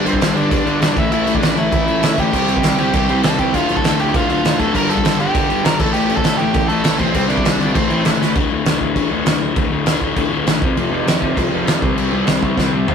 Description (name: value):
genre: punk rock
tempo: 199 BPM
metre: 4/4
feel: straight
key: D minor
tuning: A4 = 440 Hz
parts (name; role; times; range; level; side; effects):
- biting overdriven guitar; melody; 0.0-8.0 s; C4 to Bb5; -20 LUFS; right 3 dB; none
- crunchy overdriven guitar; riff; 0.0-12.9 s; D2 to C4; -19 LUFS; left 5 dB; none
- distorted electric guitar; riff; 0.0-8.3, 10.8-12.9 s; D2 to C4; -24 LUFS; right 3 dB; distortion
- fuzz picked electric bass; bass; 0.0-12.9 s; D1 to C2; -26 LUFS; right 1 dB; overdrive
- loose indie drum kit; drums; 0.1-12.9 s; crash cymbal, kick drum, snare drum, toms; -18 LUFS; right 1 dB; none
room: light reverb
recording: rough rehearsal-room recording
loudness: -14 LUFS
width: side -7 dB against mid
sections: 0.0-8.4 A section; 8.4-12.9 B section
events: drum fill 8.2, 12.6-12.9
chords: 0.0 G5; 1.0 A5; 2.3 C5; 3.5 Dm; 4.7 Gm; 5.8 Am; 7.2 C5; 7.8 Am; 8.4 D5; 10.6 F5; 11.8 C5